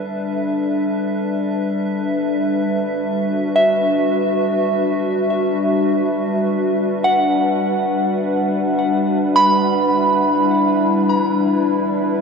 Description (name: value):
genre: ambient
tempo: free time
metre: none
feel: none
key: unclear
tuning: A4 = 440 Hz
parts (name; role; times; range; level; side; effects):
- warbly tape-like pad; sustained chords; 0.0-12.2 s; G3 to E5; -17 LUFS; left 1 dB; chorus, built-in reverb
- soft synth bell; arpeggios; 3.6-12.2 s; E5 to B5; -19 LUFS; right 1 dB; chorus, ping-pong delay
room: wet huge ambient reverb, RT60 8.6 s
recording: in a vast, echoing space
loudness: -16 LUFS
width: side -5 dB against mid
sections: 0.0-12.2 A section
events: none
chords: 0.0 D6/G